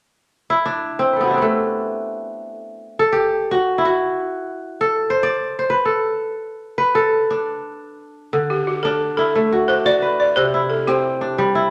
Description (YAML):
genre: west african traditional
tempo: free time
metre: none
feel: none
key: D mixolydian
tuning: A4 = 441 Hz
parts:
  - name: kora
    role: arpeggios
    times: 0.5-11.7 s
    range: C3 to D5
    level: -20 LUFS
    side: equal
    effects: none
  - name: balafon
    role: melody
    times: 8.5-11.5 s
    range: F#4 to D5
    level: -21 LUFS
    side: equal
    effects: none
room: wet large studio reverb, RT60 1.1 s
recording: none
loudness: -19 LUFS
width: mono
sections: 0.2-8.3 A section; 8.3-11.7 B section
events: kora solo 0.2-8.3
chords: 0.2 D; 10.4 C